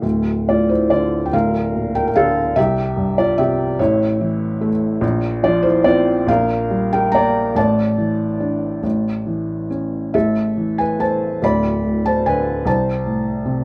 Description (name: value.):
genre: classical, lyrical solo piano.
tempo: 48 BPM (dotted quarters).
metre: 6/8.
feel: uneven beats, rubato.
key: A harmonic minor from 10.1 s.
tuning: A4 = 436 Hz.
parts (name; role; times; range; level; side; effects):
felt-muted upright piano; solo; 0.0-13.6 s; D1 to B5; -18 LUFS; equal; none.
room: moderate studio reverb, RT60 0.6 s.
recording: dark, warm production.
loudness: -18 LUFS.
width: mono.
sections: 0.0-10.1 A section; 10.1-13.6 B section.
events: none.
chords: 0.0 Dm; 1.3 Bb/D; 2.6 C; 3.8 A; 5.0 Bbsus2; 6.3 Gm/Bb; 7.6 Asus4; 8.8 A; 10.1 Asus2; 11.4 D5; 12.7 Am/C.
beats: | 0.04 1.33 | 2.57 3.80 | 5.03 6.28 | 7.56 8.85 | 10.15 11.43 | 12.66.